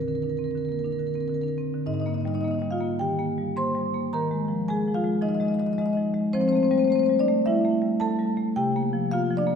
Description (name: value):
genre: classical, contemporary piece for solo marimba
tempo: 108 BPM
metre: 4/4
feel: rubato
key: Ab major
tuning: A4 = 442 Hz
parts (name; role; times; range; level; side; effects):
- marimba with medium mallets; solo; 0.0-9.6 s; Ab2 to C6; -23 LUFS; left 1 dB; none
room: wet concert hall reverb, RT60 2.0 s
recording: heard from further back in the room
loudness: -23 LUFS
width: side -6 dB against mid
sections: 0.0-1.9 A section; 1.9-9.6 B section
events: none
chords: 0.0 Bbadd9; 1.9 Abmaj9; 4.1 Ebsus24; 6.3 Fmaj9; 8.6 C9sus4